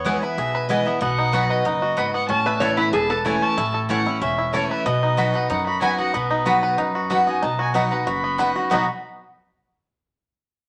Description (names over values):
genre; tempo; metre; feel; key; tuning
bluegrass; 187 BPM; 4/4; straight; B mixolydian; A4 = 440 Hz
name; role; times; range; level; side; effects
bluegrass banjo; melody; 0.0-8.9 s; B3 to B4; -27 LUFS; equal; none
dark fiddle; melody; 0.0-8.9 s; B4 to B5; -28 LUFS; equal; none
picked steel-string acoustic guitar; accompaniment; 0.0-8.8 s; E2 to F#4; -27 LUFS; equal; none
upright bass; bass; 0.0-8.9 s; E1 to F#2; -34 LUFS; equal; none
mandolin; stabs; 0.1-8.8 s; A3 to B5; -28 LUFS; equal; none
lap resonator guitar; second line; 2.5-3.5 s; E4 to C#5; -25 LUFS; equal; none
room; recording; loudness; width
wet studio reverb, RT60 0.9 s; none; -21 LUFS; mono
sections
0.0-7.4 A section; 7.4-8.7 B section; 8.7-10.0 C section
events
none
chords
0.0 E; 1.0 B; 2.3 A; 4.9 B